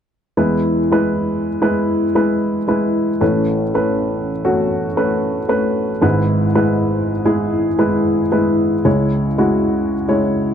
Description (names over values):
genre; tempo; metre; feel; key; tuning
pop; 85 BPM; 4/4; straight; E major; A4 = 440 Hz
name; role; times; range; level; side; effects
dark baby grand piano; accompaniment; 0.4-10.5 s; G#1 to C#5; -15 LUFS; equal; none
room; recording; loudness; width
light reverb; dry, close 1970s-style studio recording; -15 LUFS; side -8 dB against mid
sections
0.4-10.5 A section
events
none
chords
0.4 E; 3.2 Aadd9; 6.0 E/G#; 8.9 C#m